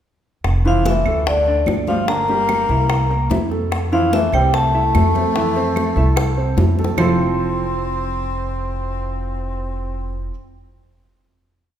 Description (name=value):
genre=Afro-Cuban jazz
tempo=147 BPM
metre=4/4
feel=straight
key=F major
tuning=A4 = 440 Hz
part: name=upright bass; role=bass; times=0.4-10.3 s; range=F1 to F2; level=-20 LUFS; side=equal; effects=none
part: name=bongos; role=percussion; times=0.4-7.1 s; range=none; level=-26 LUFS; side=left 4 dB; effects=none
part: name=claves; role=percussion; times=0.4-7.1 s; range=none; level=-32 LUFS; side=right 6 dB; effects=none
part: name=congas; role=percussion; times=0.5-7.1 s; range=none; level=-25 LUFS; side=left 1 dB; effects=none
part: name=vibraphone with medium hard mallets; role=melody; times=0.7-10.3 s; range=D5 to C6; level=-21 LUFS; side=equal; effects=none
part: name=clear tenor saxophone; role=second line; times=0.7-10.3 s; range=D3 to C4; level=-26 LUFS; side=left 4 dB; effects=none
part: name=warm baby grand piano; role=accompaniment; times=0.7-10.3 s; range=D3 to E5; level=-24 LUFS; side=right 2 dB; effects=none
room=wet recital hall reverb, RT60 1.7 s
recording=recorded in a church or concert hall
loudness=-16 LUFS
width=side -10 dB against mid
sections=0.5-7.0 A section; 7.0-10.2 final chord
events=drum fill 6.2-7.0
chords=0.5 Fmaj7; 1.3 D5; 2.1 Gm; 2.9 C7; 3.7 Fmaj7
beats=| 0.45 0.86 1.27 1.68 | 2.08 2.49 2.90 3.31 | 3.72 4.13 4.54 4.94 | 5.35 5.76 6.17 6.57 | 6.98 7.39 7.79 8.20 | 8.60 9.01 9.41 9.82